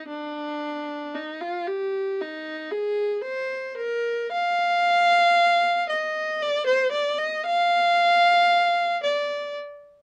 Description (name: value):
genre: classical, baroque-style suite movement for unaccompanied viola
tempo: 57 BPM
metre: 3/4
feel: rubato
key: unclear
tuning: A4 = 439 Hz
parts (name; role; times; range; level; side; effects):
- rich viola; solo; 0.0-9.6 s; D4 to F5; -23 LUFS; equal; none
room: light reverb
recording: worn, warbling old tape, cassette tape, warbly pitch drift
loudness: -23 LUFS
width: mono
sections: 0.0-10.0 A section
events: none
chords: none